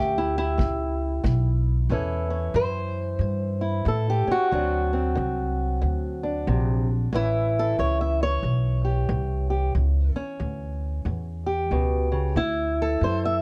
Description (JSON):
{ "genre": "acoustic country blues, solo or duo", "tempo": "92 BPM", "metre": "4/4", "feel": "swing 62% on 8ths", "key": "A mixolydian", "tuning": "A4 = 440 Hz", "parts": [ { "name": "fingerpicked old ladder-braced acoustic guitar", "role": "melody", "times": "0.0-13.4 s", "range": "A2 to E5", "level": "-28 LUFS", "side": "equal", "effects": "none" }, { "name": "upright bass", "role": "bass", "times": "0.0-13.4 s", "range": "A1 to A2", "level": "-27 LUFS", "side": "equal", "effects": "none" }, { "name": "kick drum", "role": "drums", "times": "0.6-1.4 s", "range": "none", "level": "-30 LUFS", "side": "equal", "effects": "none" } ], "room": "little or no reverb", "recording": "none", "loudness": "-25 LUFS", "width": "mono", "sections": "0.0-1.9 A section; 1.9-13.4 A section", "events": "none", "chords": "0.0 A7; 4.5 D7; 7.1 A7; 12.4 D7", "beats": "0.60 1.25 | 1.91 2.56 3.21 3.87 | 4.52 5.17 5.83 6.48 | 7.14 7.79 8.45 9.10 | 9.76 10.41 11.07 11.72 | 12.37 13.03" }